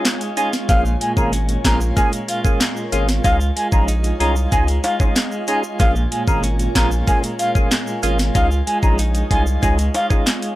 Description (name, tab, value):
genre	dancehall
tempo	94 BPM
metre	4/4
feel	straight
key	Bb minor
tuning	A4 = 440 Hz
part	percussive tonewheel organ	accompaniment	0.0-10.3 s	Bb3 to Ab4	-25 LUFS	equal	overdrive, slow rotary speaker
part	glassy FM pad	sustained chords	0.0-10.6 s	F4 to Ab5	-30 LUFS	equal	ensemble chorus, built-in reverb, sidechain pumping
part	clean electric guitar	arpeggios	0.0-10.6 s	Bb2 to F4	-26 LUFS	right 2 dB	tremolo
part	island pop drum kit	drums	0.1-10.6 s	handclaps, hi-hat, kick drum, snare drum	-18 LUFS	equal	overdrive
part	timbales and tube shaker	percussion	0.1-10.6 s	none	-32 LUFS	right 1 dB	none
part	mellow hollow silver concert flute	melody	0.4-10.1 s	F5 to Bb5	-23 LUFS	equal	analog delay
part	saturated sub bass	bass	0.7-9.9 s	Ab1 to Db2	-20 LUFS	equal	none
room	little or no reverb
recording	dry, gritty hardware recording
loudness	-16 LUFS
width	side -16 dB against mid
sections	0.0-10.6 A section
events	break 0.0-0.7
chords	0.0 Dbadd9; 0.7 Bbm7; 3.2 Dbadd9; 5.8 Bbm7; 8.4 Dbadd9